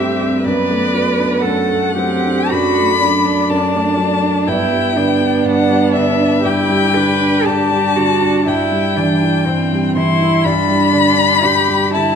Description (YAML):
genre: classical, slow romantic movement for piano quartet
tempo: 60 BPM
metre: 4/4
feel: rubato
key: G major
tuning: A4 = 440 Hz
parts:
  - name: dark violin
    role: melody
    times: 0.0-12.2 s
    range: D5 to C6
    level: -17 LUFS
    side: left 8 dB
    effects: none
  - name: rich cello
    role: second line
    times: 0.0-12.2 s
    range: C4 to B4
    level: -18 LUFS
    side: right 7 dB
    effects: none
  - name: warm concert grand piano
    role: accompaniment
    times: 0.0-12.2 s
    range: F#2 to E4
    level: -17 LUFS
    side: left 1 dB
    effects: none
  - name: warm viola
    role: accompaniment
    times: 0.0-12.2 s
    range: A3 to E4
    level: -21 LUFS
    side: right 3 dB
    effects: none
room: wet recital hall reverb, RT60 1.3 s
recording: none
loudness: -12 LUFS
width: side -7 dB against mid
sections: 0.0-12.2 A section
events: none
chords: 0.4 D7/F#; 4.5 G; 8.5 C/G; 10.4 G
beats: | 0.44 1.42 2.50 3.49 | 4.47 5.45 6.44 7.46 | 8.47 9.46 10.45 11.44